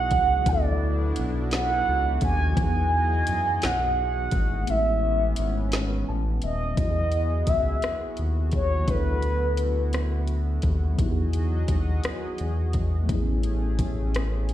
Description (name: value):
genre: slow six-eight R&B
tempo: 57 BPM (dotted quarters)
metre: 6/8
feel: straight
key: E major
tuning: A4 = 436 Hz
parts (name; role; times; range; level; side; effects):
- mellow horn-like synth lead; melody; 0.0-9.9 s; B4 to G#5; -26 LUFS; right 2 dB; chorus, phaser, slapback echo
- mellow tine electric piano; accompaniment; 0.0-14.5 s; F#3 to A5; -34 LUFS; equal; medium stereo tremolo, slapback echo
- chorused pulse-width pad; sustained chords; 0.0-14.5 s; D3 to D#5; -35 LUFS; right 1 dB; none
- round analog bass; bass; 0.0-14.5 s; D#1 to F#2; -25 LUFS; equal; none
- smooth R&B drum kit; drums; 0.1-14.5 s; hi-hat, kick drum, rim click, snare drum; -27 LUFS; equal; none
room: little or no reverb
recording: live gig heard through the venue's PA, recital hall reverb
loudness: -22 LUFS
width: side -12 dB against mid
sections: 0.0-6.8 A section; 6.8-14.5 B section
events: kick muted 4.7-6.8; tine electric piano fill 5.7-6.8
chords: 0.5 D69; 2.6 Emaj9; 4.7 Amaj9; 6.8 Emaj9; 8.9 D69; 11.0 Emaj9; 13.1 Amaj9